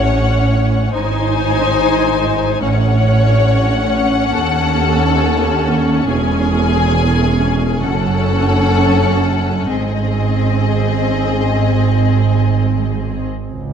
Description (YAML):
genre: classical, slow romantic movement for string orchestra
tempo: 61-75 BPM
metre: 4/4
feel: rubato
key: unclear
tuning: A4 = 442 Hz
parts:
  - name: warm studio violin section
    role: melody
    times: 0.0-13.2 s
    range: D#5 to G#5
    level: -23 LUFS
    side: left 8 dB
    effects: none
  - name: warm studio violin section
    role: second line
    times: 0.0-13.2 s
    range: G#4 to C#5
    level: -21 LUFS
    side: left 5 dB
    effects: none
  - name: warm studio viola section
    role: accompaniment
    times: 0.0-13.2 s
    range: B#3 to D#4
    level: -20 LUFS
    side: equal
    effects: none
  - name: warm studio cello section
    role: bass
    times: 0.0-13.2 s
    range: D#2 to A2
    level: -19 LUFS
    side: right 3 dB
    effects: none
  - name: warm studio double bass section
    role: bass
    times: 0.0-13.7 s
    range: E1 to D#2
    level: -18 LUFS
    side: right 3 dB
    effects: none
room: moderate scoring stage reverb, RT60 1.9 s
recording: dark, warm production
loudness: -13 LUFS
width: side -7 dB against mid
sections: 0.0-13.5 A section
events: none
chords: 0.0 F#m/A; 0.9 G#; 2.6 A6; 4.3 D#m7b5; 6.1 C#m/E; 7.8 F#m; 9.7 G#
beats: 0.14 0.95 1.78 | 2.64 3.49 4.34 5.21 | 6.09 6.96 7.83 8.73 | 9.69 10.66 11.61 12.55 | 13.50